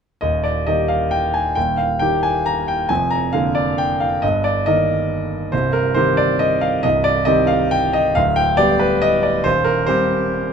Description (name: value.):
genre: classical, piano waltz.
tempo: 136 BPM.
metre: 3/4.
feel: rubato.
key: Eb major.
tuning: A4 = 440 Hz.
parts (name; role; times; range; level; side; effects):
clear concert grand piano; solo; 0.2-10.5 s; C1 to Bb5; -15 LUFS; equal; none.
room: light reverb.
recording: close, detailed microphones.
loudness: -15 LUFS.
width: side -6 dB against mid.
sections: 0.2-10.5 A section.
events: none.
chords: 0.2 Eb; 2.9 Bb/F; 4.2 Eb/G; 5.5 Cm; 8.2 G/D; 9.5 Cm/Eb.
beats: | 0.23 0.67 1.12 | 1.56 2.00 2.46 | 2.90 3.34 3.79 | 4.22 4.66 5.10 | 5.53 5.96 6.41 | 6.84 7.27 7.72 | 8.16 8.58 9.02 | 9.45 9.87 10.31.